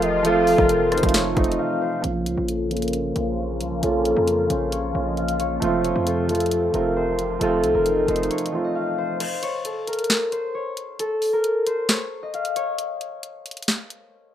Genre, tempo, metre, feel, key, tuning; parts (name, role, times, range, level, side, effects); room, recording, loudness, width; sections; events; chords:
hip hop, trap; 134 BPM; 4/4; half-time; Bb harmonic minor; A4 = 437 Hz
concert harp; melody; 0.0-14.3 s; A4 to F5; -24 LUFS; left 2 dB; low-pass filter
gliding portamento lead; second line; 0.0-0.7 s; Eb5 to F5; -25 LUFS; left 1 dB; chorus, digital delay
dark baby grand piano; accompaniment; 0.0-9.2 s; F3 to F4; -24 LUFS; right 4 dB; low-pass filter
sweeping resonant pad; sustained chords; 0.0-9.2 s; C3 to F4; -29 LUFS; left 2 dB; chorus, low-pass filter
hard-hitting 808-style bass; bass; 0.0-8.3 s; F1 to F2; -29 LUFS; equal
trap drum kit; drums; 0.0-14.0 s; crash cymbal, hi-hat, kick drum, rim click, snare drum; -24 LUFS; equal
light reverb, digital ambience; rough home demo mix; -20 LUFS; side -10 dB against mid
0.0-2.0 A section; 2.0-9.2 B section; 9.2-14.3 C section
break 1.6-2.0, 8.3-9.2, 9.2-14.3; filter sweep 2.0-9.2
0.0 F; 2.0 Bbm; 5.6 F; 9.2 N.C.